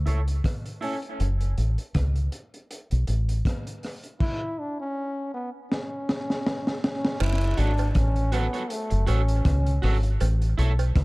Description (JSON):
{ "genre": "dub reggae", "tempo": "80 BPM", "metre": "4/4", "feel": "swing 56% on 16ths", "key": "F# minor", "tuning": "A4 = 440 Hz", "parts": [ { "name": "deep dub fingered electric bass", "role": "bass", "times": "0.0-11.0 s", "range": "F#1 to C#2", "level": "-22 LUFS", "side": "equal", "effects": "none" }, { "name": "electric guitar at the edge of break-up", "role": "accompaniment", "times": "0.1-1.0, 7.6-10.7 s", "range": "E4 to C#5", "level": "-34 LUFS", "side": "right 3 dB", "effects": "low-pass filter, tape echo" }, { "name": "crunchy breakbeat drum kit", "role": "drums", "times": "0.1-11.0 s", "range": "crash cymbal, hi-hat, kick drum, rim click, snare drum", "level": "-28 LUFS", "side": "equal", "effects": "none" }, { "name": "bright trombone", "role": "melody", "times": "0.8-9.8 s", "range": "A3 to E4", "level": "-31 LUFS", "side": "equal", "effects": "low-pass filter, tape echo" }, { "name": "cowbell and jawbone-type rattle", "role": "percussion", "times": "7.2-10.9 s", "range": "none", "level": "-37 LUFS", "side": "right 8 dB", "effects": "tape echo" } ], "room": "small room ambience", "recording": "dark, warm production", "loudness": "-23 LUFS", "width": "side -23 dB against mid", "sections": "0.0-7.2 A section; 7.2-11.0 B section", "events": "break 0.0-7.2; filter sweep 0.0-7.2; drum fill 5.7-7.2", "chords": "0.0 A; 1.2 F#m; 4.2 N.C.; 7.2 F#m; 10.2 A", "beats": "0.45 | 1.20 1.95 2.70 3.45 | 4.20 4.95 5.70 6.46 | 7.21 7.96 8.71 9.46 | 10.21 10.95" }